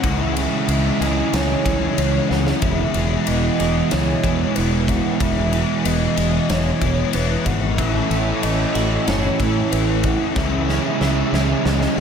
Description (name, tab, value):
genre	rock, shoegaze and dream pop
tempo	93 BPM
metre	4/4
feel	straight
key	E major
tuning	A4 = 438 Hz
part	hollow clarinet-like synth lead	melody	0.0-12.0 s	B4 to F#5	-27 LUFS	equal	chorus, tape echo
part	clean electric guitar	arpeggios	0.0-12.0 s	E3 to G#4	-30 LUFS	left 1 dB	lush chorus, tape echo
part	biting overdriven guitar	riff	0.0-12.0 s	A2 to E4	-24 LUFS	left 9 dB	analog chorus
part	crunchy overdriven guitar	riff	0.0-12.0 s	E2 to E4	-22 LUFS	right 6 dB	reverse reverb
part	growling fingered electric bass	bass	0.0-12.0 s	E1 to A2	-22 LUFS	equal	overdrive
part	big rock drum kit	drums	0.0-12.0 s	kick drum, ride cymbal, snare drum	-25 LUFS	left 1 dB	none
room	wet lush hall reverb, RT60 2.6 s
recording	dreamy mix soaked in reverb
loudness	-17 LUFS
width	side -7 dB against mid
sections	0.0-12.0 A section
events	drum fill 2.3-2.6, 10.4-12.0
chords	0.0 C#m; 2.6 Emaj7; 7.8 A6; 10.4 C#madd9